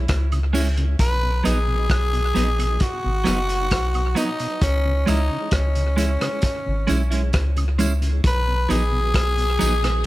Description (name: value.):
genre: roots reggae.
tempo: 66 BPM.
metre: 4/4.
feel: straight.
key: B major.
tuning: A4 = 441 Hz.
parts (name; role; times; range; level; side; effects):
growling tenor saxophone; melody; 0.0-10.1 s; C#4 to B4; -24 LUFS; left 1 dB; tape echo.
soft dub sub bass; bass; 0.0-10.0 s; F#1 to C#2; -21 LUFS; equal; none.
vintage drum kit; drums; 0.1-10.1 s; hi-hat, kick drum, rim click; -24 LUFS; equal; none.
mellow tonewheel organ; accompaniment; 0.3-9.9 s; B2 to E4; -30 LUFS; left 2 dB; slow rotary speaker, tape echo.
woodblock and tambourine; percussion; 0.3-10.0 s; none; -35 LUFS; right 5 dB; none.
semi-hollow electric guitar; accompaniment; 0.5-9.9 s; F#3 to E4; -26 LUFS; right 4 dB; spring reverb, tape echo.
room: little or no reverb.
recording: none.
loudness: -18 LUFS.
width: side -17 dB against mid.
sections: 0.0-10.1 A section.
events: none.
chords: 0.0 C#m; 1.0 B; 4.6 C#m; 8.2 B.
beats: 0.09 | 0.99 1.90 2.80 3.71 | 4.62 5.52 6.43 7.33 | 8.24 9.15 10.05.